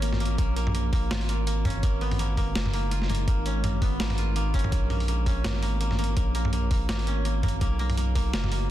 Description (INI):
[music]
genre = half-time drum and bass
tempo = 166 BPM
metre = 4/4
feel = swing 57% on 16ths, half-time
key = Bb phrygian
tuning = A4 = 440 Hz
[part]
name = deep dark ambient pad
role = sustained chords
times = 0.0-8.7 s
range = Ab3 to D#5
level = -36 LUFS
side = equal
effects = chorus, built-in reverb, sidechain pumping
[part]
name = koto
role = arpeggios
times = 0.0-8.7 s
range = Bb3 to F4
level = -33 LUFS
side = right 1 dB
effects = ping-pong delay
[part]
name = saturated sub bass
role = bass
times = 0.0-8.7 s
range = Gb1 to B1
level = -27 LUFS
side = equal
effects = none
[part]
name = boom bap sampler-style drum kit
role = drums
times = 0.0-8.6 s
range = hi-hat, snare drum, toms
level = -32 LUFS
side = equal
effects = none
[part]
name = electronic kick drum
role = drums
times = 0.4-8.2 s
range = none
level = -26 LUFS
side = equal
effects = none
[sound]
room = digital ambience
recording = dense, heavily limited modern master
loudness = -24 LUFS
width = side -13 dB against mid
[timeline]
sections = 0.0-8.7 A section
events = none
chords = 0.0 Bbm7; 1.8 Abmadd9; 4.7 Bbm7; 7.6 Badd9